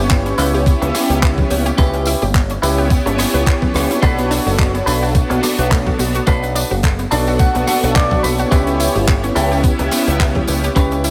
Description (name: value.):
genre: nu-disco, nu disco.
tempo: 107 BPM.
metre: 4/4.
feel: swing 55% on 16ths.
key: unclear.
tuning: A4 = 444 Hz.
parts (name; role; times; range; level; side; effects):
warm analog pad; accompaniment; 0.0-10.6 s; B3 to C#6; -22 LUFS; equal; chorus, sidechain pumping, dub echo.
picked electric bass with an envelope filter; bass; 0.0-11.1 s; F#1 to C#2; -22 LUFS; equal; sidechain pumping.
analog pluck; arpeggios; 0.1-11.1 s; A3 to B4; -28 LUFS; equal; chorus, sidechain pumping, dub echo.
electronic kick drum; drums; 0.1-10.9 s; none; -17 LUFS; equal; none.
gated 80s drum kit; drums; 0.1-11.1 s; handclaps, hi-hat, rim click, tambourine; -26 LUFS; equal; none.
tambourine and congas; percussion; 0.1-11.1 s; none; -31 LUFS; equal; none.
clean electric guitar; riff; 0.4-11.1 s; C#4 to A5; -24 LUFS; equal; lush chorus, dub echo.
room: light reverb, studio ambience.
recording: none.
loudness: -16 LUFS.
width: mono.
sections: 0.0-11.1 A section.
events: clean electric guitar fill 6.8-8.5.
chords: 0.0 C#m7b5; 4.0 Bm7; 8.5 C#m7b5.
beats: 0.11 0.67 1.23 | 1.79 2.35 2.91 3.47 | 4.03 4.59 5.15 5.71 | 6.27 6.83 7.40 7.96 | 8.52 9.08 9.64 10.20 | 10.76.